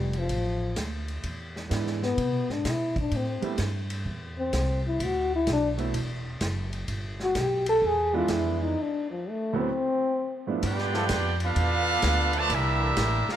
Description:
jazz, big band swing; 128 BPM; 4/4; swing 66% on 8ths; A4 = 441 Hz
trombone with bucket mute; melody; 0.0-10.5 s; F3 to A4; -27 LUFS; left 2 dB
upright bass; bass; 0.0-13.3 s; E1 to C3; -30 LUFS; equal
vintage drum kit; drums; 0.1-13.4 s; hi-hat, kick drum, ride cymbal, snare drum; -34 LUFS; equal
warm concert grand piano; accompaniment; 1.7-10.6 s; D2 to E4; -32 LUFS; right 6 dB
bright trumpet section; melody; 10.6-13.4 s; D4 to A5; -26 LUFS; right 1 dB
dark trombone section; second line; 10.6-13.4 s; D3 to G4; -31 LUFS; right 3 dB
warm trombone section; sustained chords; 10.9-12.9 s; E3 to A4; -36 LUFS; left 1 dB
light reverb; -25 LUFS; side -11 dB against mid
0.0-10.6 A section; 10.6-13.4 B section
trombone solo 0.0-10.6; break 8.8-10.6
0.0 G7sus2 (rootless); 1.2 E7; 3.1 Am7; 5.0 D69; 6.9 G; 7.8 E7; 8.8 Dm13; 9.7 Dsus2; 10.6 G13; 12.5 C13
0.30 0.77 | 1.24 1.71 2.18 2.65 | 3.12 3.59 4.06 4.53 | 5.00 5.47 5.94 6.41 | 6.88 7.35 7.82 8.29 | 8.75 9.22 9.69 10.16 | 10.63 11.10 11.56 12.03 | 12.50 12.97

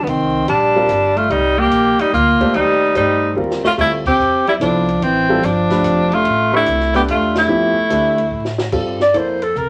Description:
modal jazz; 146 BPM; 3/4; swing 67% on 8ths; A4 = 439 Hz
clear tenor saxophone; melody; 0.0-8.6 s; B3 to G4; -18 LUFS; equal
breathy alto saxophone; second line; 0.0-9.7 s; D3 to D5; -20 LUFS; equal
upright bass; bass; 0.1-9.7 s; F1 to A2; -28 LUFS; equal
compact cocktail drum kit; drums; 0.1-9.7 s; crash cymbal, hi-hat, kick drum, ride cymbal, snare drum; -31 LUFS; equal
warm concert grand piano; accompaniment; 0.8-9.4 s; F3 to D5; -23 LUFS; equal
wet studio ambience, RT60 0.5 s; vinyl crackle; -16 LUFS; mono
0.0-8.7 A section
drum fill 3.4-3.8, 8.3-8.7; band accent 4.0, 7.3
0.0 Cm9; 3.8 Dm9; 8.7 Gm9
| 0.07 0.48 0.89 | 1.31 1.72 2.13 | 2.54 2.96 3.37 | 3.78 4.19 4.60 | 5.02 5.43 5.84 | 6.25 6.67 7.08 | 7.49 7.90 8.31 | 8.73 9.14 9.55

